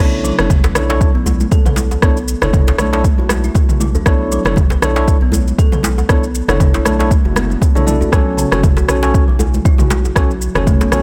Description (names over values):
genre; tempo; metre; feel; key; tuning
afro house; 118 BPM; 4/4; swing 56% on 16ths; B minor; A4 = 440 Hz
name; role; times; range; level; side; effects
kalimba; arpeggios; 0.0-11.0 s; C#3 to B4; -25 LUFS; equal; sidechain pumping
tine electric piano; stabs; 0.0-11.0 s; C#4 to D5; -22 LUFS; equal; sidechain pumping, dub echo
round analog bass; bass; 0.0-11.0 s; F#1 to B1; -21 LUFS; equal; sidechain pumping
deep house drum kit; drums; 0.2-11.0 s; rim click, shaker, toms; -22 LUFS; equal; overdrive
congas; percussion; 0.4-11.0 s; none; -27 LUFS; equal; none
electronic kick drum; drums; 0.5-10.8 s; none; -15 LUFS; equal; overdrive
djembe; percussion; 0.6-11.0 s; none; -24 LUFS; equal; none
room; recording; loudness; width
digital ambience; none; -14 LUFS; mono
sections
0.0-11.0 A section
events
none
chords
0.0 Bm11; 8.1 F#m